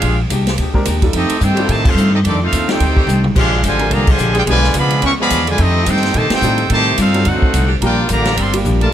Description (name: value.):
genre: jazz, big band swing.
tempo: 216 BPM.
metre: 4/4.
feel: swing 59% on 8ths.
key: unclear.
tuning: A4 = 440 Hz.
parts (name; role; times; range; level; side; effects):
bright trumpet section; melody; 0.0-8.9 s; C4 to Db6; -18 LUFS; equal; none.
clear trombone section; second line; 0.0-8.9 s; C3 to G4; -21 LUFS; right 2 dB; none.
archtop guitar, miked and amplified; accompaniment; 0.0-8.8 s; F2 to G4; -26 LUFS; left 4 dB; none.
upright bass; bass; 0.0-8.9 s; G1 to Bb2; -16 LUFS; equal; none.
swinging big-band drum kit; drums; 0.0-8.9 s; crash cymbal, hi-hat, kick drum, ride cymbal, snare drum, toms; -19 LUFS; equal; none.
warm saxophone section; sustained chords; 0.5-5.1, 7.7-8.6 s; D3 to Ab4; -27 LUFS; equal; none.
warm concert grand piano; accompaniment; 0.7-8.9 s; Gb3 to B4; -23 LUFS; equal; none.
room: light reverb.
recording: none.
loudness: -12 LUFS.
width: side -10 dB against mid.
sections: 0.0-8.9 A section.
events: band accent 1.8, 4.0, 6.3; drum fill 3.1.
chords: 0.0 Bb13; 1.1 F13; 3.4 Bb13; 4.5 Bdim7; 5.6 F13; 6.7 Am7b5; 7.2 D7b9; 7.8 Gm7.